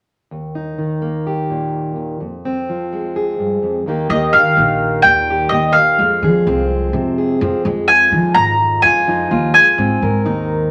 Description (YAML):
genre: folk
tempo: 127 BPM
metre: 4/4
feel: straight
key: Eb major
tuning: A4 = 440 Hz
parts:
  - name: fingerpicked plugged-in steel-string acoustic guitar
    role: accompaniment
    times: 0.3-10.7 s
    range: Eb2 to Bb4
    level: -21 LUFS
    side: equal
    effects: none
  - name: mandolin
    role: melody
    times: 4.1-10.2 s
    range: Eb5 to Bb5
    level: -14 LUFS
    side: equal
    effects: none
  - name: upright bass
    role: bass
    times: 4.1-10.7 s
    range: Ab1 to F3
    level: -22 LUFS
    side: equal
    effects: none
room: wet studio reverb, RT60 0.8 s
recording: none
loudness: -15 LUFS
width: mono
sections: 0.3-4.1 A section; 4.1-10.7 B section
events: none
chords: 0.3 Eb; 2.2 Fm; 3.9 Eb; 6.0 Fm; 7.6 Fm7; 9.8 Abadd9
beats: | 0.32 0.80 1.27 1.74 | 2.21 2.69 3.16 3.63 | 4.10 4.58 5.05 5.52 | 5.99 6.47 6.94 7.41 | 7.88 8.36 8.83 9.30 | 9.78 10.25